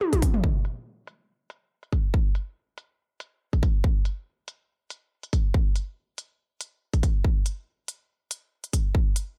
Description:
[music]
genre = dubstep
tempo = 141 BPM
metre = 4/4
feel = swing 55% on 16ths, half-time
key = none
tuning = none
[part]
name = dubstep drum kit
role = drums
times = 0.0-9.3 s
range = hi-hat, toms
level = -32 LUFS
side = equal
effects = low-pass filter on hats, low-pass filter on snare, low-pass filter on toms
[part]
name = electronic kick drum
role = drums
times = 0.1-9.0 s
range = none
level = -25 LUFS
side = equal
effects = none
[sound]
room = little or no reverb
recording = none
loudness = -26 LUFS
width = mono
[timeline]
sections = 0.4-9.4 A section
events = drum fill 0.0-0.4; filter sweep on drum 0.4-9.4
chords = none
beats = 0.01 | 0.44 0.86 1.29 1.71 | 2.14 2.56 2.99 3.42 | 3.84 4.27 4.69 5.12 | 5.54 5.97 6.39 6.82 | 7.25 7.67 8.10 8.52 | 8.95

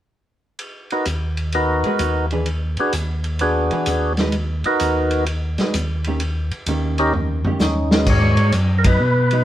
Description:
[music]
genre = soul jazz organ trio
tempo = 128 BPM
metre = 4/4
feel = swing 67% on 8ths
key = G# minor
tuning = A4 = 440 Hz
[part]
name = vintage drum kit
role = drums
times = 0.6-9.4 s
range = crash cymbal, hi-hat, kick drum, ride cymbal, snare drum, toms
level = -24 LUFS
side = equal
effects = none
[part]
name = percussive tonewheel organ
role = melody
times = 0.9-9.4 s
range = B3 to C#5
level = -20 LUFS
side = equal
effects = slow rotary speaker
[part]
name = mellow tonewheel organ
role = bass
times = 1.1-9.4 s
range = D#2 to B2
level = -20 LUFS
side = equal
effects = chorus vibrato, slow rotary speaker
[part]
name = vintage hollow-body jazz guitar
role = accompaniment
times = 1.9-9.4 s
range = D#3 to B4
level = -25 LUFS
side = right 2 dB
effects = none
[sound]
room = light reverb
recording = band playing live in one room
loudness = -17 LUFS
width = side -12 dB against mid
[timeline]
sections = 0.6-8.1 A section; 8.1-9.4 B section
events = drum fill 7.1-8.1; band accent 8.8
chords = 0.6 G#m7; 4.3 D#7; 8.1 G#m7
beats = | 0.61 1.07 1.54 2.01 | 2.48 2.94 3.41 3.88 | 4.34 4.81 5.28 5.75 | 6.21 6.68 7.14 7.61 | 8.08 8.54 9.01

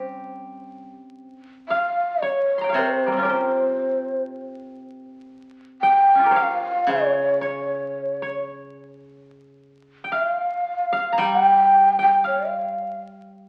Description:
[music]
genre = japanese traditional, Japanese chamber music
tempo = 56 BPM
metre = 2/4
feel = rubato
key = C in sen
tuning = A4 = 440 Hz
[part]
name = breathy mellow long shakuhachi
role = melody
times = 0.0-13.0 s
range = C5 to G5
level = -22 LUFS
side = equal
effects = none
[part]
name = koto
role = second line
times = 0.0-13.5 s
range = G3 to C6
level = -29 LUFS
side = equal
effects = none
[part]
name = koto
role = accompaniment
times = 0.0-13.5 s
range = C3 to G4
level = -33 LUFS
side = equal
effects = none
[sound]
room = moderate recital hall reverb, RT60 1.4 s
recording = very old 78 rpm record, vinyl crackle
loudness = -21 LUFS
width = mono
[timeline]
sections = 0.6-13.5 A section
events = none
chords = none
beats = | 0.61 1.69 | 2.75 3.79 | 4.80 5.84 | 6.89 7.96 | 9.04 10.12 | 11.20 12.25 | 13.28

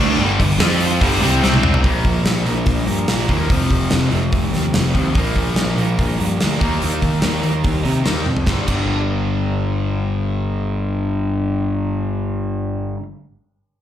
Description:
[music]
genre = hard rock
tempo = 145 BPM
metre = 4/4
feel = straight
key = G minor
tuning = A4 = 440 Hz
[part]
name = heavy high-gain guitar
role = riff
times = 0.0-1.8 s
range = G2 to F4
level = -21 LUFS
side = left 1 dB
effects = distortion, slapback echo
[part]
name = overdriven semi-hollow guitar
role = riff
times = 0.0-13.0 s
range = F2 to F4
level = -24 LUFS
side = left 8 dB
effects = slapback echo
[part]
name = sludgy distorted guitar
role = riff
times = 0.0-13.0 s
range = F2 to F4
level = -25 LUFS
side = right 8 dB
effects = overdrive, slapback echo
[part]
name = fuzz picked electric bass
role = bass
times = 0.0-13.0 s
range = F1 to C3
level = -20 LUFS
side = equal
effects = overdrive
[part]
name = gated 80s drum kit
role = drums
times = 0.4-8.8 s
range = crash cymbal, hi-hat, kick drum, snare drum, toms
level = -19 LUFS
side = equal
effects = none
[sound]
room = small room ambience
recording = live gig heard through the venue's PA, club reverb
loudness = -16 LUFS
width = side -10 dB against mid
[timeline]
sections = 0.0-1.8 A section; 1.8-8.5 B section; 8.5-11.8 C section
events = drum fill 1.4-1.8, 8.3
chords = 0.0 G5; 0.6 F5; 1.0 G5; 1.4 C5; 1.8 Bb5; 3.5 F5; 5.2 Bb5; 6.6 Eb5; 8.5 G5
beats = | 0.20 0.61 1.02 1.43 | 1.85 2.26 2.67 3.09 | 3.50 3.91 4.33 4.74 | 5.16 5.57 5.99 6.40 | 6.81 7.23 7.64 8.06 | 8.47 8.89 9.30 9.72 | 10.13 10.54 10.96 11.37

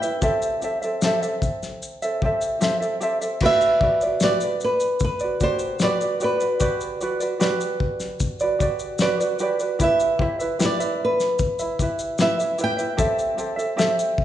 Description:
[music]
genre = acoustic pop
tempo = 75 BPM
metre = 4/4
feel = straight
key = G major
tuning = A4 = 441 Hz
[part]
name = flamenco guitar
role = melody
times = 0.0-14.2 s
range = B4 to G5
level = -22 LUFS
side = equal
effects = none
[part]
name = tenor ukulele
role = accompaniment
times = 0.0-14.2 s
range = C4 to E5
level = -23 LUFS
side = right 2 dB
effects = none
[part]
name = cloth-damped thuddy drum kit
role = drums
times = 0.0-14.2 s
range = crash cymbal, kick drum, shaker, snare drum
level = -26 LUFS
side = left 2 dB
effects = none
[sound]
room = wet recital hall reverb, RT60 1.4 s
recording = recorded in a church or concert hall, nothing above 10.5 kHz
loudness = -20 LUFS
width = side -12 dB against mid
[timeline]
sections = 0.0-3.4 A section; 3.4-14.2 A section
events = none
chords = 0.2 C6; 3.4 Gmaj7; 9.8 Em; 13.0 C6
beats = | 0.22 1.01 1.81 2.61 | 3.41 4.21 5.00 5.80 | 6.60 7.40 8.20 8.99 | 9.79 10.59 11.39 12.19 | 12.99 13.78

